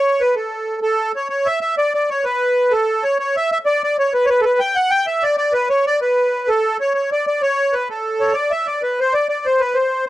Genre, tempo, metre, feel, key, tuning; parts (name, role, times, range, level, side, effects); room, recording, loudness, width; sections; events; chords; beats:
celtic folk; 128 BPM (dotted quarters); 6/8; straight; A4 = 440 Hz
accordion; solo; 0.0-10.1 s; A4 to G5; -16 LUFS; equal; light tremolo tuning
small room ambience; dry, close 1970s-style studio recording; -16 LUFS; side -15 dB against mid
0.8-8.4 A section; 8.4-10.1 B section
0.36 | 0.83 1.30 | 1.77 2.24 | 2.71 3.18 | 3.65 4.12 | 4.59 5.06 | 5.53 6.00 | 6.47 6.94 | 7.41 7.88 | 8.35 8.82 | 9.29 9.76